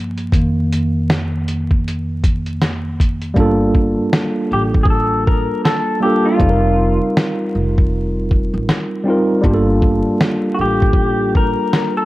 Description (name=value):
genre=lo-fi hip hop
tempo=79 BPM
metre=4/4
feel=swing 59% on 16ths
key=G minor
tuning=A4 = 440 Hz
part: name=bright tine electric piano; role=accompaniment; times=0.0-12.1 s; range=F2 to Bb4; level=-18 LUFS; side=right 1 dB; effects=medium stereo tremolo, cassette tape, low-pass filter
part: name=lo-fi sampler-style drum kit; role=drums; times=0.2-11.9 s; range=hi-hat, kick drum, snare drum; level=-16 LUFS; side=equal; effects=none
part: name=upright bass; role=bass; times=3.4-11.5 s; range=F1 to A1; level=-20 LUFS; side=equal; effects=none
part: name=electric guitar through a small old amp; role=melody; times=4.5-12.1 s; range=F4 to Bb4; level=-19 LUFS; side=left 2 dB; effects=low-pass filter
room=light reverb, digital ambience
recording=vinyl crackle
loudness=-14 LUFS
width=side -18 dB against mid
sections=0.0-3.4 A section; 3.4-12.1 B section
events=tine electric piano solo 0.0-3.4; hi-hats muted 3.4-12.1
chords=0.3 F7sus4; 3.4 Gm9; 6.4 F9sus4; 9.4 Gm9